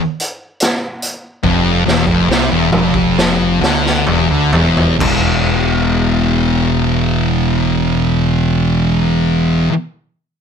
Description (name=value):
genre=stoner and doom metal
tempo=63-74 BPM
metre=4/4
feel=straight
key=unclear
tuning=A4 = 439 Hz
part: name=raw garage drum kit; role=drums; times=0.2-5.2 s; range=crash cymbal, hi-hat, kick drum, snare drum, toms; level=-18 LUFS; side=equal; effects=none
part: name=thick fuzz guitar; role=riff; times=1.4-9.7 s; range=E2 to E3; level=-15 LUFS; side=left 10 dB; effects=distortion
part: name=thick fuzz guitar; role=riff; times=1.4-9.7 s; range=E2 to E3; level=-17 LUFS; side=right 13 dB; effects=distortion
part: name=growling picked electric bass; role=bass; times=1.4-9.7 s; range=E1 to D2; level=-19 LUFS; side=equal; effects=overdrive
room=light reverb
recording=none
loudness=-12 LUFS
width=side -7 dB against mid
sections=0.0-5.0 A section; 5.0-8.8 B section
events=slowing down 0.0-5.0; drum fill 1.4-5.0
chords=0.0 N.C.; 5.0 E5